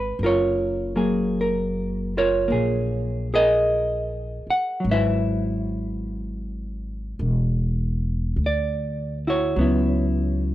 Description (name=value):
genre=jazz ballad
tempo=51 BPM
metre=4/4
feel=swing 67% on 8ths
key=G# minor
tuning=A4 = 441 Hz
part: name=hollow-body jazz guitar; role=accompaniment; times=0.0-10.5 s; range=F#3 to F#5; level=-22 LUFS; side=equal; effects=none
part: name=upright bass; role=bass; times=0.0-10.5 s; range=E1 to D2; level=-25 LUFS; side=equal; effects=none
room=small room ambience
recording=dry, close 1970s-style studio recording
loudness=-21 LUFS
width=side -14 dB against mid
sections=0.0-10.5 A section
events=none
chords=0.2 F#maj9; 4.8 G#7alt; 9.6 C#m11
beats=| 0.16 1.32 2.48 3.65 | 4.83 6.00 7.18 8.37 | 9.56